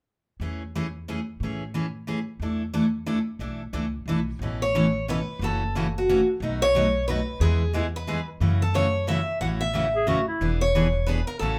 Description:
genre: acoustic string swing (jazz manouche)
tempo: 180 BPM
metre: 3/4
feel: swing 60% on 8ths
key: A major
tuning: A4 = 441 Hz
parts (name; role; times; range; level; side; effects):
- picked steel-string acoustic guitar; accompaniment; 0.4-11.6 s; B2 to A4; -30 LUFS; equal; none
- upright bass; bass; 0.4-11.6 s; E1 to A2; -30 LUFS; equal; none
- picked steel-string acoustic guitar; melody; 4.6-11.6 s; F#4 to F#5; -28 LUFS; equal; none
- warm clarinet; second line; 10.0-10.5 s; E4 to G#4; -29 LUFS; equal; none
room: moderate club reverb, RT60 0.6 s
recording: none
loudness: -25 LUFS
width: mono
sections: 0.4-4.4 A section; 4.4-11.6 B section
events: none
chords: 0.4 Amaj7/E; 2.4 E7sus4; 4.4 Aadd9; 5.4 F#m7; 6.4 B7; 7.4 E; 8.4 F#m7; 9.4 A6; 10.4 E7

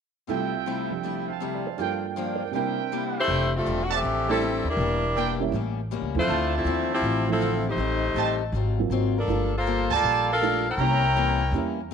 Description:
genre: jazz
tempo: 160 BPM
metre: 4/4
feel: swing 65% on 8ths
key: F major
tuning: A4 = 441 Hz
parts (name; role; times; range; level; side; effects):
- dark baby grand piano; accompaniment; 0.3-11.8 s; C2 to F5; -30 LUFS; right 10 dB; none
- picked acoustic archtop guitar; accompaniment; 0.3-11.9 s; F2 to A4; -32 LUFS; left 12 dB; none
- clear trumpet section; stabs; 0.3-11.4 s; C4 to Bb5; -30 LUFS; right 11 dB; none
- clear saxophone section; melody; 3.2-11.8 s; E3 to G5; -25 LUFS; left 2 dB; none
- upright bass; bass; 3.3-11.9 s; E1 to E2; -28 LUFS; equal; none
room: light reverb, studio reverb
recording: 1960s-style stereo with parts hard left and right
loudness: -23 LUFS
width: side -7 dB against mid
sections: 0.3-3.3 A section; 3.3-11.9 B section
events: none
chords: 0.3 Fmaj9/C; 1.8 Gm7; 2.5 C7; 3.3 Fmaj13; 4.8 Em7b5; 5.5 A7b9; 6.3 Dm9; 7.8 Am7b5; 8.5 Ab13; 9.3 Gm9; 10.8 C7b9

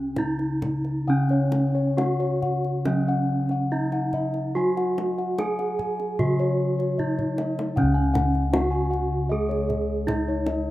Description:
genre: Javanese gamelan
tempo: 66-78 BPM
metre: 4/4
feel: straight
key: unclear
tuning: A4 = 440 Hz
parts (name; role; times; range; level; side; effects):
- gamelan-type bronze metallophone; melody; 0.0-10.7 s; C#4 to G#4+20c; -26 LUFS; right 1 dB; none
- gamelan-type bronze metallophone; accompaniment; 0.0-10.7 s; C#3 to G#3+20c; -28 LUFS; equal; none
- gamelan-type bossed gongs; bass; 0.0-10.7 s; C#2 to F#4-20c; -28 LUFS; equal; none
- kendang; percussion; 0.2-10.6 s; none; -30 LUFS; left 1 dB; none
- gamelan-type bossed gongs; arpeggios; 1.1-10.7 s; C#5 to G#5+20c; -30 LUFS; left 4 dB; none
room: moderate plate reverb, RT60 3.2 s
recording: rough home demo mix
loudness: -22 LUFS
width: side -16 dB against mid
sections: 0.0-7.8 A section; 7.8-10.7 B section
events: drum fill 7.0-7.8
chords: none

